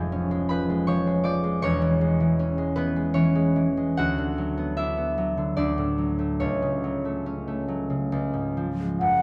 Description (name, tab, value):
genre	classical, romantic duo for flute and harp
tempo	64-80 BPM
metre	3/4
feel	rubato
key	unclear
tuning	A4 = 439 Hz
part	concert harp	accompaniment	0.0-9.2 s	E1 to D6	-25 LUFS	equal	none
part	hollow concert flute	melody	9.0-9.2 s	F#5	-22 LUFS	equal	none
room	moderate recital hall reverb, RT60 1.5 s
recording	close, detailed microphones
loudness	-25 LUFS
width	mono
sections	0.0-9.0 A section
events	none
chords	0.0 C#/E#; 1.6 C#m/E; 4.0 Bm/D; 5.6 D; 6.4 F#m/C#; 8.1 C#